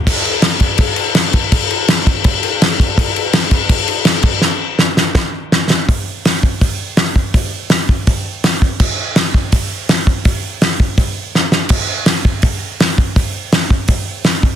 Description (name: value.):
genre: punk.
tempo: 165 BPM.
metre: 4/4.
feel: straight.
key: none.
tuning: none.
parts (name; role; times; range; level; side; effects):
loose indie drum kit; drums; 0.1-14.5 s; crash cymbal, hi-hat, kick drum, snare drum; -12 LUFS; equal; none.
room: light reverb.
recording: dense, heavily limited modern master.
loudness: -12 LUFS.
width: side -10 dB against mid.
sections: 0.1-5.9 A section; 5.9-14.6 B section.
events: drum fill 4.4-5.9, 11.3-11.7.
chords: none.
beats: | 0.07 0.43 0.79 1.16 | 1.52 1.88 2.25 2.61 | 2.97 3.34 3.70 4.06 | 4.43 4.79 5.15 5.52 | 5.88 6.25 6.61 6.98 | 7.34 7.71 8.07 8.43 | 8.80 9.16 9.53 9.89 | 10.26 10.62 10.98 11.35 | 11.71 12.07 12.44 12.80 | 13.16 13.53 13.89 14.25.